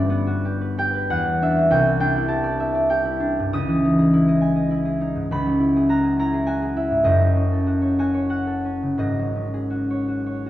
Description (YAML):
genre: classical, solo harp piece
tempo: 81-104 BPM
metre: 3/4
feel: rubato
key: C# minor from 3.5 s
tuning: A4 = 440 Hz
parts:
  - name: concert harp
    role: solo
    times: 0.0-10.5 s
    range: F#1 to D#6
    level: -18 LUFS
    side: equal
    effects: none
room: wet recital hall reverb, RT60 1.5 s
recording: dark, warm production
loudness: -18 LUFS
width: side -14 dB against mid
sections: 0.0-10.5 A section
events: none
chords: 0.0 Gmaj7; 1.1 Em9; 1.7 Cadd9; 3.5 C#madd9; 5.3 E69/C#; 7.1 F#m6; 9.0 G#7sus4